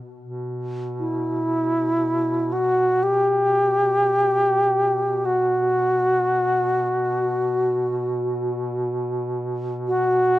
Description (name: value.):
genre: caucasian folk, Caucasian lament.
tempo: free time.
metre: none.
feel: none.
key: unclear.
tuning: A4 = 440 Hz.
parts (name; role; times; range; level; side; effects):
warm duduk; drone; 0.0-10.4 s; B2; -28 LUFS; equal; none.
bright alto flute; melody; 1.0-10.4 s; E4 to G4; -19 LUFS; equal; cassette tape.
room: light reverb, small room ambience.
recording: home recording on cassette.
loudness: -19 LUFS.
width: side -15 dB against mid.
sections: 0.2-10.4 A section.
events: none.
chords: none.